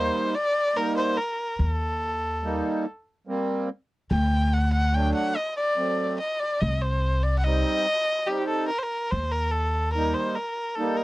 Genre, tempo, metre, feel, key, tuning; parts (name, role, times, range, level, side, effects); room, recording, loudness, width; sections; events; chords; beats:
klezmer; 72 BPM; 3/4; straight; A4 = 443 Hz
rich erhu; melody; 0.0-11.0 s; G4 to G5; -26 LUFS; equal
accordion; accompaniment; 0.0-11.0 s; F#3 to Eb4; -26 LUFS; right 2 dB; light tremolo tuning
upright bass; bass; 0.0-10.1 s; C2 to Eb2; -24 LUFS; equal
light reverb; dry, close 1970s-style studio recording; -23 LUFS; side -18 dB against mid
0.0-11.0 A section
0.0 Eb; 4.1 D; 6.6 Cm; 9.1 Eb
0.77 | 1.60 2.44 3.27 | 4.11 4.94 5.78 | 6.61 7.45 8.28 | 9.12 9.95 10.79